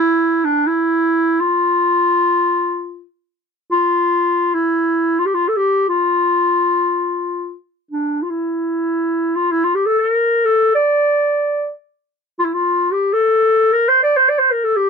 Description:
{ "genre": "Turkish makam ensemble", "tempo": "free time", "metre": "none", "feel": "none", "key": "unclear", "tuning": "A4 = 440 Hz", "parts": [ { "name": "warm clarinet", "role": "solo", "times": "0.0-14.9 s", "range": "D4 to D5", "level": "-14 LUFS", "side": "left 1 dB", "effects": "none" } ], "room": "little or no reverb", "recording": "close, detailed microphones", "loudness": "-14 LUFS", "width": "side -5 dB against mid", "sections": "0.0-14.9 A section", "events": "none", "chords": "none", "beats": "free time" }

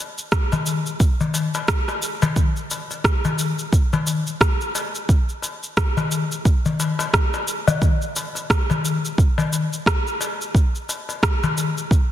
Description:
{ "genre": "downtempo", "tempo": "88 BPM", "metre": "4/4", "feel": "swing 58% on 16ths", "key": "none", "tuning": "none", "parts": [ { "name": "electronic cabasa and rim click", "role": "drums", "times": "0.2-12.1 s", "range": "none", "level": "-24 LUFS", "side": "right 1 dB", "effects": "soft clipping on snare" }, { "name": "electronic kick drum", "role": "drums", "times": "0.3-12.1 s", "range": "none", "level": "-18 LUFS", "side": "right 1 dB", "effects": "none" }, { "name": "darbuka", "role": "percussion", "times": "0.5-11.7 s", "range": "none", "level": "-23 LUFS", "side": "left 4 dB", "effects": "none" } ], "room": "moderate echo chamber reverb, RT60 2.4 s", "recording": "dense, heavily limited modern master", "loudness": "-19 LUFS", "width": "side -12 dB against mid", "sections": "0.0-12.1 A section", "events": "none", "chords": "none", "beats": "0.32 1.00 1.68 | 2.36 3.05 3.73 4.41 | 5.09 5.77 6.46 7.14 | 7.82 8.50 9.18 9.86 | 10.55 11.23 11.91" }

